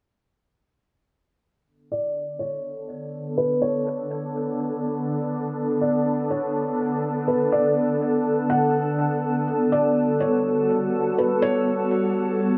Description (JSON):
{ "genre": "hip hop", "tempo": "123 BPM", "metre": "4/4", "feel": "half-time", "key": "B minor", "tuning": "A4 = 441 Hz", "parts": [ { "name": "shimmering ambient pad", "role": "sustained chords", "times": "2.4-12.6 s", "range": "D3 to A4", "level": "-25 LUFS", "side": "equal", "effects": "chorus, built-in reverb, low-pass filter" }, { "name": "felt-muted upright piano", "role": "melody", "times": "1.9-12.6 s", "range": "B4 to F#5", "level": "-28 LUFS", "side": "equal", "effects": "low-pass filter, analog delay" } ], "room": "moderate spring reverb, RT60 1.7 s", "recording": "echo-heavy mix", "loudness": "-23 LUFS", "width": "mono", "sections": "1.7-12.6 A section", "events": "filter sweep 1.7-12.6", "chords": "1.7 Bm9; 9.5 Gmaj9" }